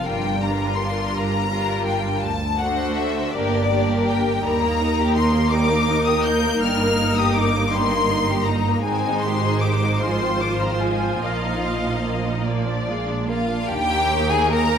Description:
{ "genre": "classical, slow romantic movement for string orchestra", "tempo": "48-56 BPM (dotted quarters)", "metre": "6/8", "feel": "rubato", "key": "Eb major from 4.4 s", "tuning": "A4 = 440 Hz", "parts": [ { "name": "rich studio violin section", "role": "melody", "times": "0.0-14.8 s", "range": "D5 to G6", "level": "-24 LUFS", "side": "left 5 dB", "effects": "none" }, { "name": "rich studio violin section", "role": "second line", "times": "0.0-14.8 s", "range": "G3 to Eb5", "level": "-25 LUFS", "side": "left 2 dB", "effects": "none" }, { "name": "rich studio viola section", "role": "accompaniment", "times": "0.0-14.8 s", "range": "F3 to F4", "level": "-24 LUFS", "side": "right 2 dB", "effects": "none" }, { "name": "rich symphonic double bass section", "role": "bass", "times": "0.1-14.8 s", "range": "G1 to Eb2", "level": "-26 LUFS", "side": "right 3 dB", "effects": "none" }, { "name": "warm studio cello section", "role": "bass", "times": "0.1-14.8 s", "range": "D2 to Bb2", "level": "-27 LUFS", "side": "right 3 dB", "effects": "none" } ], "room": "moderate scoring stage reverb, RT60 1.6 s", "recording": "none", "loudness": "-18 LUFS", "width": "side -8 dB against mid", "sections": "0.0-13.7 A section; 13.7-14.8 B section", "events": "none", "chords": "0.1 Gm7; 2.2 D7; 3.4 Gm; 4.4 Eb; 6.6 Eb/G; 8.8 Abmaj7; 10.0 Fm/Ab; 11.2 Bbsus4; 12.5 Bb; 13.7 Eb5" }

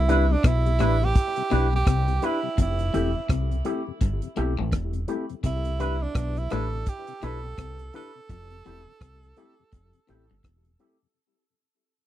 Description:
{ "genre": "lovers rock reggae", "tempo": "84 BPM", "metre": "4/4", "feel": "swing 60% on 16ths", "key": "unclear", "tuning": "A4 = 440 Hz", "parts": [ { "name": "bright tenor saxophone", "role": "melody", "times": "0.0-10.4 s", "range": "D4 to A4", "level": "-30 LUFS", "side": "right 5 dB", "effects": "tape echo" }, { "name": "deep dub fingered electric bass", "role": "bass", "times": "0.0-10.8 s", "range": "E1 to C2", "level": "-25 LUFS", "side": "equal", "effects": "none" }, { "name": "mellow tine electric piano", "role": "accompaniment", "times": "0.1-11.0 s", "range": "C4 to B4", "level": "-33 LUFS", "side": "left 5 dB", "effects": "medium stereo tremolo, tape echo" }, { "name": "mellow tonewheel organ", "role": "accompaniment", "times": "0.1-11.1 s", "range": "F2 to E4", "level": "-37 LUFS", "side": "left 12 dB", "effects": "slow rotary speaker, tape echo" }, { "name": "electric guitar with an envelope filter", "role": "stabs", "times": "0.1-11.0 s", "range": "A3 to B4", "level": "-30 LUFS", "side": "right 2 dB", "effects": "none" }, { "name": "damped 70s drum kit", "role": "drums", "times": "0.1-11.0 s", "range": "hi-hat, kick drum, rim click", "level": "-23 LUFS", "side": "equal", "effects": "none" }, { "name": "twangy electric guitar", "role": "riff", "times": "0.4-10.7 s", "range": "E2 to C3", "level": "-32 LUFS", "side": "left 6 dB", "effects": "warbly pitch drift" } ], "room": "little or no reverb", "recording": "dry, close 1970s-style studio recording", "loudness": "-22 LUFS", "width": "side -13 dB against mid", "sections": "0.0-11.2 A section", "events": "fade-out 0.0-11.2", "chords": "0.0 Cmaj9; 2.6 Fmaj9; 5.4 Cmaj9; 8.3 Fmaj9" }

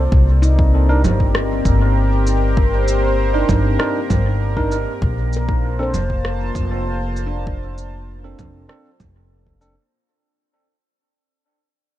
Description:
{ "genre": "ambient dub", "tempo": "98 BPM", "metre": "4/4", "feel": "straight", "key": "unclear", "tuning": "A4 = 444 Hz", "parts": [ { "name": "warm analog pad", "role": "sustained chords", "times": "0.0-9.9 s", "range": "Bb3 to A5", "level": "-24 LUFS", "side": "left 1 dB", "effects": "chorus" }, { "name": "upright bass", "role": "bass", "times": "0.0-9.7 s", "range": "F1 to C2", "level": "-18 LUFS", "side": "equal", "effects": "tube saturation" }, { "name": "electronic kick drum", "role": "drums", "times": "0.1-9.6 s", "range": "none", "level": "-19 LUFS", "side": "equal", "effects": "none" }, { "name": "drifting glass-harmonics texture", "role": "texture", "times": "0.6-9.9 s", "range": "Bb3", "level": "-30 LUFS", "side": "right 1 dB", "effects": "chorus, built-in reverb" }, { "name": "handpan", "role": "arpeggios", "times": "0.4-9.8 s", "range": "D4 to C5", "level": "-30 LUFS", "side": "left 2 dB", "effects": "dub echo" }, { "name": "electronic shaker, congas and rim click", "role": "drums", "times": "0.4-9.7 s", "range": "none", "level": "-26 LUFS", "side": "right 2 dB", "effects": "dub echo" }, { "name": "tine electric piano", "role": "stabs", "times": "0.9-9.7 s", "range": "C4 to Bb4", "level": "-26 LUFS", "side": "right 3 dB", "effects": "auto-pan, dub echo" } ], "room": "digital ambience", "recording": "none", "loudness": "-15 LUFS", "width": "side -13 dB against mid", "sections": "0.0-9.9 A section", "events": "fade-out 3.4-9.9", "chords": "0.1 Cm7; 5.0 Bbmaj7" }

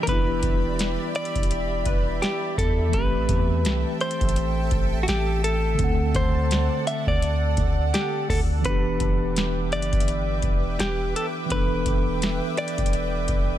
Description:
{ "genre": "contemporary R&B", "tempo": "84 BPM", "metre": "4/4", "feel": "swing 58% on 16ths", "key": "E minor", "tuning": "A4 = 440 Hz", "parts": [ { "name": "direct-recorded clean electric guitar", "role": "melody", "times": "0.0-13.6 s", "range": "F#4 to E5", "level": "-28 LUFS", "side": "equal", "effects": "ping-pong delay" }, { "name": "mellow tine electric piano", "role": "accompaniment", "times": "0.0-13.6 s", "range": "D3 to F#5", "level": "-29 LUFS", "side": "equal", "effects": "medium stereo tremolo" }, { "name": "granular cloud pad", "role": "sustained chords", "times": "0.0-13.6 s", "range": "G4 to D6", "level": "-31 LUFS", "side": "right 2 dB", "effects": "built-in reverb" }, { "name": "long sustained 808-style bass", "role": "bass", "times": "0.1-13.6 s", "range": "E1 to E2", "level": "-26 LUFS", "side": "equal", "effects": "none" }, { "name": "booming analog drum machine", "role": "drums", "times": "0.1-13.5 s", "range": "hi-hat, kick drum, snare drum", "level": "-25 LUFS", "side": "equal", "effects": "none" }, { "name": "glassy wavetable pluck", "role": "texture", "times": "1.9-8.1 s", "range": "A4 to B4", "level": "-39 LUFS", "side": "right 1 dB", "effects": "none" } ], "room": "little or no reverb", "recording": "none", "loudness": "-21 LUFS", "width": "side -12 dB against mid", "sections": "0.0-13.6 A section", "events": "none", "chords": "0.0 Em7; 2.9 Am7; 5.8 D7; 8.6 Em7" }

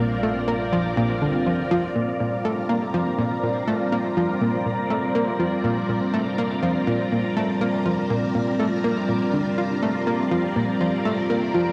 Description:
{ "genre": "ambient, sequencer-driven space music", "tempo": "122 BPM", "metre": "4/4", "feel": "straight", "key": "Bb major", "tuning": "A4 = 440 Hz", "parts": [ { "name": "string machine, full ensemble", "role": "sustained chords", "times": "0.0-11.7 s", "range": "G3 to D5", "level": "-26 LUFS", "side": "equal", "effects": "ensemble chorus" }, { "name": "analog pluck", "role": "riff", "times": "0.0-11.6 s", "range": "Bb2 to F4", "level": "-26 LUFS", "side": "equal", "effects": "chorus, analog delay" }, { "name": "fat analog bass", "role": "bass", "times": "0.0-1.9 s", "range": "Bb1", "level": "-37 LUFS", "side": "equal", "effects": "tube saturation" }, { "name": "wind-like tuned noise texture", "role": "texture", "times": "0.0-11.7 s", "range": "F5 to Bb5", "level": "-36 LUFS", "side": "equal", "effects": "built-in reverb" } ], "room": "wet spring reverb, RT60 2.9 s", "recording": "home recording on cassette", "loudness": "-23 LUFS", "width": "mono", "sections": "0.0-2.0 A section; 2.0-11.7 B section", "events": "none", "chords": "0.0 Bb6" }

